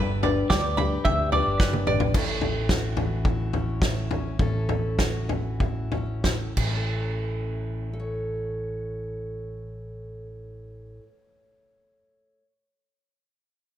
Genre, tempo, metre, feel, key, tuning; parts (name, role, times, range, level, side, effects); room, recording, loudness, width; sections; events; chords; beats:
indie folk with a building arrangement; 88-110 BPM; 4/4; straight; A mixolydian; A4 = 440 Hz
fingerpicked steel-string acoustic guitar; accompaniment; 0.0-12.5 s; F#2 to C#5; -33 LUFS; left 1 dB
picked steel-string acoustic guitar; accompaniment; 0.0-2.2 s; G3 to B4; -30 LUFS; left 5 dB
bluegrass banjo; arpeggios; 0.0-2.1 s; B4 to B5; -30 LUFS; right 6 dB
picked electric bass; bass; 0.0-11.0 s; G1 to D2; -30 LUFS; equal
natural country drum kit; drums; 0.2-6.7 s; crash cymbal, kick drum, snare drum, toms; -26 LUFS; equal
semi-hollow electric guitar; melody; 0.5-1.8 s; D5 to E5; -26 LUFS; right 1 dB; tremolo
light reverb; -23 LUFS; side -11 dB against mid
0.0-2.1 A section; 2.1-6.9 B section; 6.9-12.4 C section
drum fill 1.6-2.1; slowing down 2.1-6.9
0.0 G; 2.1 A
0.51 1.05 1.60 | 2.15 2.69 3.25 3.81 | 4.39 4.99 5.60 6.24 | 6.91 7.60 8.28 8.97 | 9.65 10.34 11.02 11.71